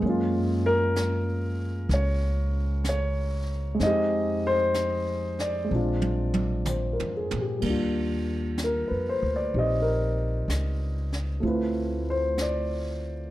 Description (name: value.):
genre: jazz ballad.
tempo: 63 BPM.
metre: 4/4.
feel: swing 67% on 8ths.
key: Eb major.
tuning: A4 = 441 Hz.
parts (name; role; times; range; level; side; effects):
warm concert grand piano; accompaniment; 0.0-13.3 s; G3 to Eb5; -26 LUFS; equal; none.
upright bass; bass; 0.0-13.3 s; Bb1 to Bb2; -28 LUFS; equal; none.
jazz brush drum kit; drums; 0.0-13.3 s; brushed snare drum, hi-hat, kick drum, ride cymbal, snare drum, toms; -34 LUFS; right 2 dB; none.
room: light reverb.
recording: dark, warm production.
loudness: -24 LUFS.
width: side -15 dB against mid.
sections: 0.0-7.6 A section; 7.6-13.3 B section.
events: drum fill 5.7-7.6.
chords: 0.0 Gbmaj9; 3.8 Fm7; 5.7 Bb9; 7.6 Ebmaj9; 11.4 Dm7.